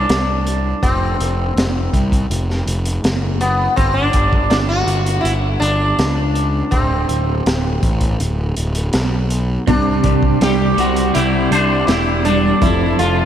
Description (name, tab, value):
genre	psychedelic rock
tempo	81 BPM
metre	4/4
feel	straight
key	unclear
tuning	A4 = 441 Hz
part	sitar	melody	0.0-13.3 s	B3 to G4	-19 LUFS	equal	ping-pong delay
part	fuzz picked electric bass	bass	0.0-13.3 s	D1 to C#2	-18 LUFS	equal	overdrive
part	crunchy breakbeat drum kit	drums	0.1-13.2 s	hi-hat, kick drum, snare drum	-20 LUFS	equal	none
part	combo organ	sustained chords	9.7-13.3 s	G3 to C6	-25 LUFS	right 4 dB	none
part	twangy electric guitar	riff	9.7-13.3 s	F2 to C5	-17 LUFS	equal	rotary speaker, double-tracked left and right
room	moderate lush hall reverb, RT60 2.8 s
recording	dreamy mix soaked in reverb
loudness	-14 LUFS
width	side -10 dB against mid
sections	0.0-13.3 A section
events	none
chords	0.0 Csus2; 0.8 F5; 3.8 G5; 6.7 D5; 9.7 Csus2; 12.6 F